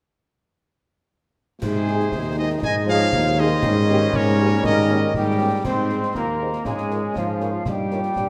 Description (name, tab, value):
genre	military-style march for wind band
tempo	119 BPM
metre	2/4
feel	straight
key	Ab major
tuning	A4 = 439 Hz
part	clear cornet	melody	1.6-8.3 s	F4 to Ab5	-29 LUFS	equal	none
part	mellow hollow flute section	second line	1.6-8.3 s	Ab4 to C6	-30 LUFS	equal	none
part	warm euphonium	second line	1.6-8.3 s	C3 to G4	-30 LUFS	equal	none
part	bright trombone section	sustained chords	1.6-8.3 s	F3 to Eb4	-29 LUFS	equal	none
part	mellow tuba	bass	1.6-8.3 s	Eb2 to Ab2	-25 LUFS	equal	none
part	concert snare drum, clash cymbals and concert bass drum	drums	1.6-8.3 s	none	-33 LUFS	equal	none
part	mellow French horn section	accompaniment	1.9-8.0 s	Ab3 to Db5	-32 LUFS	equal	none
room	wet scoring stage reverb, RT60 2.0 s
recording	none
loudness	-21 LUFS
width	mono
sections	1.6-5.7 A section; 5.7-8.3 B section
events	none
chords	1.6 Ab; 3.6 Eb7/Ab; 5.7 Ab; 6.7 Bbm7/Ab; 7.7 Eb7/G